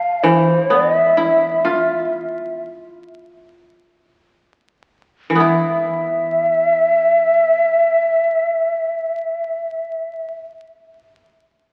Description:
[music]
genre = japanese traditional, Japanese chamber music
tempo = free time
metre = none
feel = none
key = unclear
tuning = A4 = 440 Hz
[part]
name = breathy mellow shakuhachi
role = melody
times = 0.0-10.3 s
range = E5 to F5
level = -18 LUFS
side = equal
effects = none
[part]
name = koto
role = accompaniment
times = 0.0-10.4 s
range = A2 to F4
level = -20 LUFS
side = equal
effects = none
[sound]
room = wet concert hall reverb, RT60 2.2 s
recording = very old 78 rpm record, vinyl crackle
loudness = -17 LUFS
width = mono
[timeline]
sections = 0.0-5.4 A section; 5.4-10.1 B section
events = slowing down 1.0-5.4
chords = none

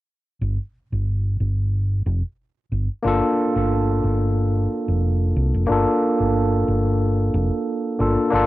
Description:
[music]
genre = sunset chillout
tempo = 91 BPM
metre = 4/4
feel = swing 55% on 16ths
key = G minor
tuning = A4 = 440 Hz
[part]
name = hollow-body short-scale fingered electric bass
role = bass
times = 0.4-8.5 s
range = F1 to C2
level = -20 LUFS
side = equal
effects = none
[part]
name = barky tine electric piano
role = accompaniment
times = 3.0-8.5 s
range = Bb3 to A4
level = -20 LUFS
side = equal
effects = auto-pan, low-pass filter, analog delay
[sound]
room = digital ambience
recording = dry, gritty hardware recording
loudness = -19 LUFS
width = side -16 dB against mid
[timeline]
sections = 0.4-5.7 A section; 5.7-8.5 B section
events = filter sweep on tine electric piano 5.7-8.5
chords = 0.4 Gm9

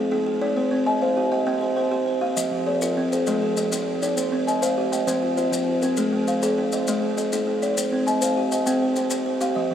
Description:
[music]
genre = southern african traditional, mbira-style interlocking cycle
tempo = 133 BPM (dotted quarters)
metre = 12/8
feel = straight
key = unclear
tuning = A4 = 441 Hz
[part]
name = buzzing kalimba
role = arpeggios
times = 0.0-9.7 s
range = F3 to Ab5+43c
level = -24 LUFS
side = left 3 dB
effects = none
[part]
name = buzzing kalimba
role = arpeggios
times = 0.0-9.7 s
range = F3 to F5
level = -23 LUFS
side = right 2 dB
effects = none
[part]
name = maracas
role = percussion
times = 2.4-9.5 s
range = none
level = -33 LUFS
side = left 4 dB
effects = none
[sound]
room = wet huge ambient reverb, RT60 7.9 s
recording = in a vast, echoing space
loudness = -20 LUFS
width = side -9 dB against mid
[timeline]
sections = 0.0-9.6 A section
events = none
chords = 0.0 Ab5; 0.6 Cm; 2.4 Fm; 3.3 Ab; 4.2 Cm; 5.1 F5; 6.0 Ab; 7.8 Cm

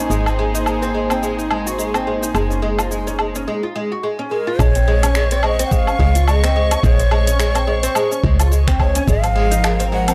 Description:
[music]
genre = organic downtempo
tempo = 107 BPM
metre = 4/4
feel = swing 57% on 16ths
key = Bb minor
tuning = A4 = 441 Hz
[part]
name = warm studio string section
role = sustained chords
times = 0.0-10.1 s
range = F3 to Db6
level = -28 LUFS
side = equal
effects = sidechain pumping
[part]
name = oud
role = arpeggios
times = 0.0-10.1 s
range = Ab3 to Gb4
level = -24 LUFS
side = equal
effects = analog delay
[part]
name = woody FM bass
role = bass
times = 0.0-10.1 s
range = Gb1 to Db2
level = -20 LUFS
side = equal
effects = none
[part]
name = wind-like tuned noise texture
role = texture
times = 0.0-3.5 s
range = Eb4 to Eb5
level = -38 LUFS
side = equal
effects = none
[part]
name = afro-pop drum kit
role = drums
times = 0.1-10.1 s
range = cabasa, finger snaps, hi-hat, woodblock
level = -26 LUFS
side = equal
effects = studio reverb
[part]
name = breathy ney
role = melody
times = 4.3-10.1 s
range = Bb4 to Gb5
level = -25 LUFS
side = equal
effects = analog delay
[part]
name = electronic kick drum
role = drums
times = 4.6-9.2 s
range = none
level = -20 LUFS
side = equal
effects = studio reverb
[sound]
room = little or no reverb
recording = dry, gritty hardware recording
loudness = -17 LUFS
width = mono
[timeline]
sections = 0.0-4.6 A section; 4.6-10.1 B section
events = none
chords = 0.1 Abadd9; 2.4 Gbmaj9; 4.6 Bbm9; 9.1 Ab9

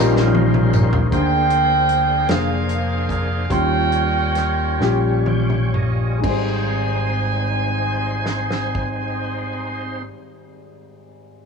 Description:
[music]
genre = slow gospel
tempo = 40-52 BPM (dotted quarters)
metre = 6/8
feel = straight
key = Ab major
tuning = A4 = 440 Hz
[part]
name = edgy saxophone section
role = melody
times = 0.0-10.0 s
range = Bb3 to Ab5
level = -22 LUFS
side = right 3 dB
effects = none
[part]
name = warm baby grand piano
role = accompaniment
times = 0.0-11.5 s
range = Ab1 to C6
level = -24 LUFS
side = left 4 dB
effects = none
[part]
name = overdriven tonewheel organ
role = sustained chords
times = 0.0-10.0 s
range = G3 to G5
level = -27 LUFS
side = right 3 dB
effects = slow rotary speaker, chorus vibrato
[part]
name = fingered electric bass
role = bass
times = 0.0-10.1 s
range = F1 to Eb2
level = -22 LUFS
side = equal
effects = none
[part]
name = natural country drum kit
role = drums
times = 0.2-9.0 s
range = crash cymbal, hi-hat, kick drum, snare drum, toms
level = -24 LUFS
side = equal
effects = none
[part]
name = tambourine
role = percussion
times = 0.7-1.1 s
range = none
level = -34 LUFS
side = left 7 dB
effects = none
[sound]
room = little or no reverb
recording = worn, warbling old tape, cassette tape, warbly pitch drift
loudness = -17 LUFS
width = side -5 dB against mid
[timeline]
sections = 0.0-1.1 A section; 1.1-6.2 B section; 6.2-9.3 C section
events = drum fill 0.0-1.1, 4.8-6.2; slowing down 1.1-6.2; tonewheel organ fill 4.8-6.2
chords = 0.0 Eb13; 1.1 Bb9/D; 3.5 Eb13; 6.2 Abmaj7

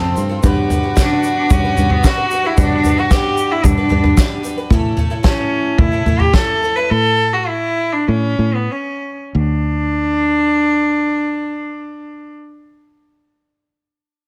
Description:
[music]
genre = indie folk with a building arrangement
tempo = 90-112 BPM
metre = 4/4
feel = straight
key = unclear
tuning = A4 = 444 Hz
[part]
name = warm cello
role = melody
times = 0.0-12.3 s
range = B3 to B4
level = -20 LUFS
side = equal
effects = none
[part]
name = dark fiddle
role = second line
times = 0.0-4.7 s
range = F4 to F#4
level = -25 LUFS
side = equal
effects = none
[part]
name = picked twelve-string acoustic guitar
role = accompaniment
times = 0.0-6.9 s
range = A2 to B4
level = -28 LUFS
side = equal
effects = none
[part]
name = warm upright piano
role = accompaniment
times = 0.0-4.7 s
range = F1 to D5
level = -30 LUFS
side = equal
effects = none
[part]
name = warm chamber string section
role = sustained chords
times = 0.0-2.6 s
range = A4 to D6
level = -34 LUFS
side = equal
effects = none
[part]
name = fingered electric bass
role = bass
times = 0.0-12.3 s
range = D2 to A2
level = -22 LUFS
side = equal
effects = none
[part]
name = egg shaker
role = percussion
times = 0.2-4.6 s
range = none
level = -35 LUFS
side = equal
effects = none
[part]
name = unplugged drum kit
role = drums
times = 0.4-6.5 s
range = kick drum, snare drum, toms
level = -18 LUFS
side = equal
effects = none
[sound]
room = small room ambience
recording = none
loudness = -16 LUFS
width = mono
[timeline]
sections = 0.0-9.3 A section; 9.3-14.3 B section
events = slowing down 4.7-9.3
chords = 0.4 G; 4.7 A; 9.3 N.C.

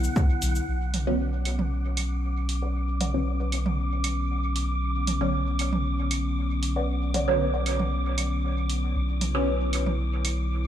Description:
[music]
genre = dub techno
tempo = 116 BPM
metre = 4/4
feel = straight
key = B minor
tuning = A4 = 440 Hz
[part]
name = warbly tape-like pad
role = sustained chords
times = 0.0-10.7 s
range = D3 to E4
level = -34 LUFS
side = left 4 dB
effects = chorus, built-in reverb, sidechain pumping
[part]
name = soft dub sub bass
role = bass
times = 0.0-10.7 s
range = B1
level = -26 LUFS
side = equal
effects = sidechain pumping
[part]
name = electronic cabasa and hi-hat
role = drums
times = 0.0-10.4 s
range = none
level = -32 LUFS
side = right 2 dB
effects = none
[part]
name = wind-like tuned noise texture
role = texture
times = 0.0-10.7 s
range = F#5 to D6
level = -36 LUFS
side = right 1 dB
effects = built-in reverb, sidechain pumping
[part]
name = electronic toms and claves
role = percussion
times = 0.9-10.4 s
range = none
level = -34 LUFS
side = right 4 dB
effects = overdrive, sidechain pumping on toms, sidechain pumping on perc, dub echo
[part]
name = filtered dub chord stab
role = stabs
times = 1.1-9.5 s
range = D3 to C#4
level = -29 LUFS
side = right 2 dB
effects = phaser, sidechain pumping, dub echo
[part]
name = warbly dusty pluck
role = riff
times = 2.6-3.5, 6.8-7.6 s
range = B4 to F#5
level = -36 LUFS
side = left 2 dB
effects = lush chorus, cassette tape, sidechain pumping, dub echo
[sound]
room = light reverb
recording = none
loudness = -24 LUFS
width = side -10 dB against mid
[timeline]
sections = 0.7-10.7 A section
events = none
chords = 0.0 Bm; 0.7 Bmadd9

